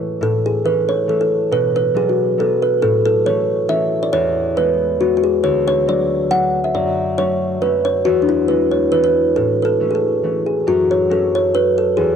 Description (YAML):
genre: celtic folk, Celtic waltz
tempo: 138 BPM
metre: 3/4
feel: swing 53% on 8ths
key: A major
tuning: A4 = 440 Hz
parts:
  - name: concert harp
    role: accompaniment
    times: 0.0-12.2 s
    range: D2 to D4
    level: -23 LUFS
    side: left 3 dB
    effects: none
  - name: kalimba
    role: melody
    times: 0.2-12.2 s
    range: D4 to F#5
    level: -15 LUFS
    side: equal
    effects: none
room: light reverb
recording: home recording on cassette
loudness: -14 LUFS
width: side -7 dB against mid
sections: 0.2-10.7 A section; 10.7-12.2 B section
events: none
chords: 0.2 A; 1.5 Bm; 2.8 A; 4.1 E; 5.4 D; 6.7 F#m; 8.1 E; 9.4 A; 10.7 F#m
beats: | 0.21 0.65 1.08 | 1.51 1.95 2.39 | 2.82 3.26 3.69 | 4.13 4.57 5.00 | 5.44 5.87 6.31 | 6.75 7.18 7.62 | 8.05 8.49 8.93 | 9.36 9.80 10.23 | 10.67 11.11 11.54 | 11.98